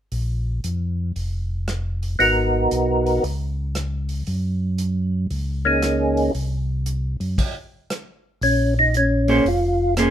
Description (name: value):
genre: soul jazz organ trio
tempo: 116 BPM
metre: 4/4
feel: swing 66% on 8ths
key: Bb minor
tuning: A4 = 440 Hz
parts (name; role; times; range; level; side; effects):
- mellow tonewheel organ; bass; 0.1-10.1 s; F1 to Gb2; -23 LUFS; equal; overdrive, chorus vibrato, slow rotary speaker
- warm soul drum kit; drums; 0.1-10.1 s; crash cymbal, hi-hat, kick drum, rim click; -29 LUFS; equal; none
- percussive tonewheel organ; melody; 2.2-9.9 s; Bb3 to Bb4; -18 LUFS; equal; slow rotary speaker, chorus vibrato
- vintage hollow-body jazz guitar; accompaniment; 9.3-10.1 s; Bb3 to C5; -19 LUFS; right 2 dB; none
room: light reverb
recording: minimal, uncompressed stereo recording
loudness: -19 LUFS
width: side -10 dB against mid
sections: 0.1-8.4 A section; 8.4-10.1 B section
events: stop 7.4-8.4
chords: 0.1 Bb5; 2.2 Abm7; 3.2 N.C.; 4.3 Gb6; 6.3 N.C.; 8.4 Bbm9